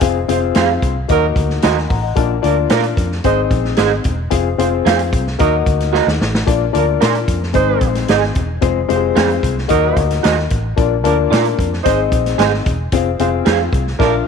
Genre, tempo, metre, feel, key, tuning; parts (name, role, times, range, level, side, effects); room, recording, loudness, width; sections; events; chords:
uptempo 1960s-style soul; 112 BPM; 4/4; straight; Bb mixolydian; A4 = 437 Hz
dark concert grand piano; accompaniment; 0.0-14.3 s; Ab3 to C6; -18 LUFS; left 13 dB
vintage muted fingered electric bass; bass; 0.0-14.2 s; E1 to Bb2; -20 LUFS; equal; tube saturation
vintage drum kit; drums; 0.0-14.1 s; hi-hat, kick drum, snare drum; -19 LUFS; equal
warm horn section; second line; 0.3-14.2 s; F3 to C5; -20 LUFS; right 12 dB
electric guitar through a small old amp; stabs; 0.6-13.6 s; F4 to F5; -19 LUFS; right 12 dB; analog chorus
light reverb, studio reverb; 1960s-style stereo with parts hard left and right; -13 LUFS; side -6 dB against mid
0.0-14.3 A section
drum fill 5.9-6.5, 14.0
0.0 Fm; 1.1 Ebm; 2.2 Bb; 3.2 Ab; 4.3 Fm; 5.4 Ebm; 6.5 Bb; 7.5 Ab; 8.6 Fm; 9.7 Ebm; 10.8 Bb; 11.8 Ab; 12.9 Fm